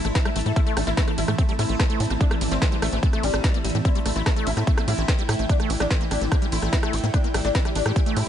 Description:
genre	psychedelic trance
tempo	146 BPM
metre	4/4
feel	straight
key	A minor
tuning	A4 = 438 Hz
part	sitar	melody	0.0-8.3 s	E3 to E4	-30 LUFS	left 2 dB	phaser, sidechain pumping, tape echo
part	evolving wavetable pad	sustained chords	0.0-8.3 s	E3 to G4	-31 LUFS	right 1 dB	ensemble chorus, built-in reverb, phaser, sidechain pumping
part	liquid acid bass	riff	0.0-8.2 s	G3 to E4	-31 LUFS	moving between left 9 dB and right 7 dB	chorus, auto-pan, sidechain pumping, tape echo
part	drum and bass drum kit	drums	0.0-8.2 s	hi-hat, ride cymbal, rim click, snare drum	-29 LUFS	equal	overdrive
part	airy breathy pad	texture	0.0-8.3 s	A3 to A5	-34 LUFS	left 1 dB	chorus, sidechain pumping
part	tight sequencer bass	bass	0.1-8.2 s	A1 to A2	-25 LUFS	equal	none
part	electronic kick drum	drums	0.2-8.0 s	none	-22 LUFS	equal	none
part	metallic wobble bass	second line	4.7-7.2 s	A3 to D4	-42 LUFS	right 6 dB	none
room	digital ambience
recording	nothing above 10.7 kHz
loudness	-20 LUFS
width	side -10 dB against mid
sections	0.0-8.3 A section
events	none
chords	0.0 A5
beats	0.15 | 0.56 0.97 1.39 1.80 | 2.21 2.62 3.03 3.44 | 3.85 4.26 4.67 5.08 | 5.49 5.91 6.32 6.73 | 7.14 7.55 7.96

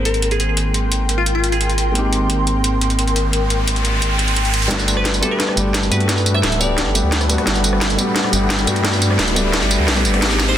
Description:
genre	liquid drum and bass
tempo	174 BPM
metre	4/4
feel	straight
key	unclear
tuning	A4 = 440 Hz
part	felt-muted upright piano	accompaniment	0.0-10.6 s	G3 to G5	-22 LUFS	equal	none
part	ethereal airy pad	sustained chords	0.0-10.6 s	A4 to C6	-26 LUFS	equal	ensemble chorus, built-in reverb, phaser, sidechain pumping
part	dark detuned saw bass	bass	0.0-10.6 s	D1 to G2	-20 LUFS	equal	none
part	glassy wavetable pluck	melody	0.1-2.0, 5.0-7.0, 10.5-10.6 s	F4 to E5	-23 LUFS	left 1 dB	chorus, tape echo
part	drum and bass drum kit	drums	0.1-10.5 s	hi-hat, rim click, snare drum, tambourine	-20 LUFS	equal	none
part	riser	sound effects	3.0-10.6 s	none	-25 LUFS	equal	none
part	electronic kick drum	drums	4.7-10.3 s	none	barely audible	none	none
room	moderate lush hall reverb, RT60 1.8 s, digital ambience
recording	dense, heavily limited modern master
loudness	-15 LUFS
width	side -10 dB against mid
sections	0.0-4.7 A section; 4.7-10.6 B section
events	riser 3.0-4.7, 4.7-10.6; build-up 4.7-10.6; drum fill 4.7-10.6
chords	0.0 Abmaj9; 4.7 Gmaj9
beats	0.23 | 0.57 0.92 1.26 1.61 | 1.95 2.30 2.64 2.99 | 3.33 3.68 4.02 4.37 | 4.71 5.05 5.40 5.75 | 6.09 6.43 6.78 7.12 | 7.47 7.81 8.16 8.50 | 8.85 9.19 9.54 9.88 | 10.23 10.57

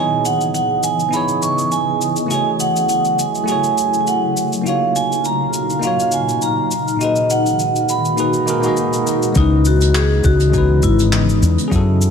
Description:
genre	sunset chillout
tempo	102 BPM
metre	4/4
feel	swing 55% on 16ths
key	C# minor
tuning	A4 = 442 Hz
part	vibraphone with medium hard mallets	melody	0.0-11.6 s	D#4 to C#6	-18 LUFS	right 2 dB	digital delay
part	bell-like tine electric piano	accompaniment	0.0-12.1 s	A#2 to D#5	-22 LUFS	left 1 dB	auto-pan, ping-pong delay
part	shimmering ambient pad	sustained chords	0.0-12.1 s	A#2 to E#5	-22 LUFS	left 1 dB	chorus, built-in reverb, phaser
part	jazz brush drum kit	drums	0.3-12.1 s	cabasa, handclaps, hi-hat	-26 LUFS	left 2 dB	none
part	woody fretless electric bass	bass	9.4-12.1 s	G#1 to F#2	-14 LUFS	equal	none
part	electronic kick drum	drums	9.4-11.8 s	none	-19 LUFS	equal	none
room	light reverb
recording	none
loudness	-14 LUFS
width	side -6 dB against mid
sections	0.0-9.4 A section; 9.4-12.1 B section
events	none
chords	0.0 C#m9; 2.3 F#m9; 4.7 D#m9; 6.7 G#m9; 9.4 C#m9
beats	0.54 1.13 1.72 | 2.30 2.89 3.48 4.07 | 4.66 5.24 5.83 6.42 | 7.01 7.60 8.19 8.77 | 9.36 9.95 10.54 11.13 | 11.71

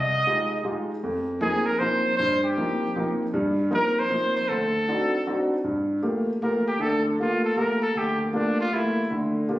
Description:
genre	jazz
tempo	156 BPM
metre	3/4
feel	swing 66% on 8ths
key	G dorian from 5.6 s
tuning	A4 = 444 Hz
part	breathy trumpet	melody	0.0-9.1 s	Bb3 to Eb5	-24 LUFS	equal	none
part	warm concert grand piano	accompaniment	0.0-9.6 s	C2 to G4	-25 LUFS	equal	none
room	wet large studio reverb, RT60 1.3 s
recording	recorded on a phone in the room, studio reverb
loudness	-22 LUFS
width	side -15 dB against mid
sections	0.0-5.6 A section; 5.6-9.6 B section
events	trumpet solo 5.6-9.6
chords	0.0 Fm9; 1.0 Cm7/F; 4.5 D7b9; 5.6 Gm9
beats	0.26 0.64 | 1.03 1.41 1.80 | 2.18 2.56 2.95 | 3.33 3.72 4.10 | 4.49 4.87 5.25 | 5.64 6.02 6.41 | 6.79 7.18 7.56 | 7.95 8.33 8.72 | 9.10 9.49

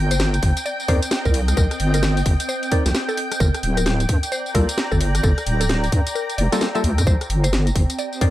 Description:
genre	UK garage, two-step garage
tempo	131 BPM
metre	4/4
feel	swing 62% on 16ths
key	C minor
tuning	A4 = 438 Hz
part	soft string machine	sustained chords	0.0-8.3 s	G5	-29 LUFS	right 1 dB	ensemble chorus, sidechain pumping
part	deep soft wobble bass	bass	0.0-8.3 s	D1 to G2	-20 LUFS	equal	chorus
part	granular cloud pad	texture	0.0-8.3 s	C4 to Bb5	-31 LUFS	equal	built-in reverb, sidechain pumping
part	mallet-like synth pluck	melody	0.1-8.3 s	A4 to E5	-29 LUFS	left 1 dB	chorus, dub echo
part	garage drum kit	drums	0.1-8.3 s	hi-hat, rim click, snare drum, tambourine	-26 LUFS	equal	none
part	electronic kick drum	drums	0.4-8.3 s	none	-19 LUFS	equal	none
part	percussive organ stab	stabs	0.9-8.3 s	G3 to D5	-26 LUFS	left 1 dB	wide subtle chorus, dub echo
room	light reverb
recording	echo-heavy mix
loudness	-17 LUFS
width	side -15 dB against mid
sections	0.0-8.3 A section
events	kick drops out 6.2-7.1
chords	0.0 Cm9; 3.2 Gm9; 7.1 Cm9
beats	0.20 0.66 1.11 | 1.57 2.03 2.49 2.94 | 3.40 3.86 4.32 4.78 | 5.24 5.69 6.15 6.61 | 7.07 7.53 7.98

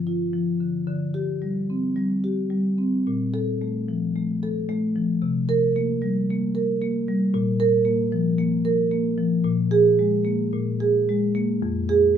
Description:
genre	classical, contemporary piece for solo marimba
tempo	112 BPM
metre	4/4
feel	rubato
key	unclear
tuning	A4 = 436 Hz
part	marimba with soft mallets	solo	0.0-12.2 s	F2 to Bb4	-20 LUFS	equal	none
room	light reverb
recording	minimal, uncompressed stereo recording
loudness	-20 LUFS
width	side -8 dB against mid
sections	0.0-12.2 A section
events	none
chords	0.0 N.C.; 0.9 D7sus4; 3.1 Bb5; 5.2 C5; 7.3 Bb5; 9.5 Absus2/Bb; 11.6 Fm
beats	0.34 | 0.88 1.43 1.97 2.51 | 3.06 3.60 4.14 4.68 | 5.22 5.75 6.28 6.82 | 7.34 7.87 8.40 8.93 | 9.46 10.00 10.53 11.07 | 11.61 12.15

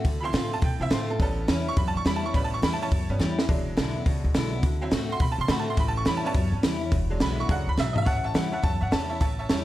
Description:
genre	rockabilly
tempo	210 BPM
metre	4/4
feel	swing 64% on 8ths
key	A mixolydian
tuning	A4 = 441 Hz
part	picked steel-string acoustic guitar	accompaniment	0.0-9.6 s	E2 to F#4	-31 LUFS	left 2 dB	none
part	upright bass	bass	0.0-9.6 s	E1 to C3	-29 LUFS	equal	none
part	compact cocktail drum kit	drums	0.0-9.6 s	hi-hat, kick drum, snare drum, toms	-26 LUFS	equal	none
part	tack piano	accompaniment	0.2-9.6 s	F3 to C#6	-31 LUFS	right 3 dB	none
part	clear upright piano	melody	8.0-9.6 s	F5 to A5	-31 LUFS	left 2 dB	slapback echo
room	light reverb, studio reverb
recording	none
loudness	-23 LUFS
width	side -14 dB against mid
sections	0.0-8.1 A section; 8.1-9.6 B section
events	honky-tonk piano solo 0.0-8.1; drum fill 3.2, 7.8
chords	0.0 Dm7; 1.2 A7; 3.5 E7; 4.6 D7; 5.8 A7; 6.9 E7; 8.1 A7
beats	| 0.05 0.33 0.62 0.91 | 1.20 1.48 1.77 2.06 | 2.34 2.63 2.92 3.20 | 3.49 3.77 4.06 4.35 | 4.63 4.92 5.21 5.49 | 5.78 6.06 6.35 6.63 | 6.92 7.21 7.49 7.78 | 8.06 8.35 8.64 8.92 | 9.21 9.50

